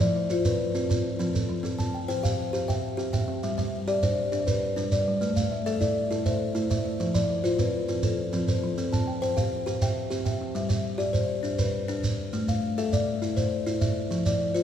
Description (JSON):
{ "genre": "southern african traditional, mbira-style interlocking cycle", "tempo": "135 BPM (dotted quarters)", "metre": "12/8", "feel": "straight", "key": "G mixolydian", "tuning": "A4 = 439 Hz", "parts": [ { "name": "buzzing kalimba", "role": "arpeggios", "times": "0.0-14.6 s", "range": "F3 to A5", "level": "-27 LUFS", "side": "left 2 dB", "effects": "none" }, { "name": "kalimba", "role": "arpeggios", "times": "0.0-10.9 s", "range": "F3 to G5", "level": "-33 LUFS", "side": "right 2 dB", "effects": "none" }, { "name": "shekere", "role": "percussion", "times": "0.0-14.6 s", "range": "none", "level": "-28 LUFS", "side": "right 2 dB", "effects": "none" } ], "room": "wet church reverb, RT60 3.7 s", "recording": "recorded in a church or concert hall", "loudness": "-24 LUFS", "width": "side -9 dB against mid", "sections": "0.0-10.6 A section; 10.6-14.6 B section", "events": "none", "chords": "0.0 F; 1.6 C; 3.4 G; 5.2 Am; 7.0 F; 8.8 C; 10.6 G; 12.3 Am; 14.1 F5" }